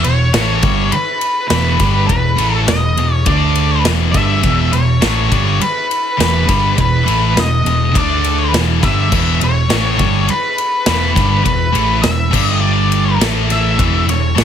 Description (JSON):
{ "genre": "quiet-loud alternative rock", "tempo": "103 BPM", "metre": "4/4", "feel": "straight", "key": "unclear", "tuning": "A4 = 440 Hz", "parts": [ { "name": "octave-fuzz lead guitar", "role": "melody", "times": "0.0-14.4 s", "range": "B4 to E5", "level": "-18 LUFS", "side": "left 1 dB", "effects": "distortion" }, { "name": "scooped high-gain guitar", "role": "riff", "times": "0.0-14.4 s", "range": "E2 to D4", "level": "-20 LUFS", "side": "left 15 dB", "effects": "distortion" }, { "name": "sludgy distorted guitar", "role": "riff", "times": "0.0-14.4 s", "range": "E2 to D4", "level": "-18 LUFS", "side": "right 9 dB", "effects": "overdrive" }, { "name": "overdriven picked electric bass", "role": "bass", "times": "0.0-14.4 s", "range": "E1 to D2", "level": "-17 LUFS", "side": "equal", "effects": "none" }, { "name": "big rock drum kit", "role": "drums", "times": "0.0-14.4 s", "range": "crash cymbal, kick drum, ride cymbal, snare drum", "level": "-18 LUFS", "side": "left 1 dB", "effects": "none" } ], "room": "light reverb", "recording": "none", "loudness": "-12 LUFS", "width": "side -9 dB against mid", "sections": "0.0-14.4 A section", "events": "none", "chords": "0.0 E5; 3.3 D5; 3.8 E5; 7.9 D5; 8.5 E5; 12.3 G5; 13.2 A5; 13.8 E5" }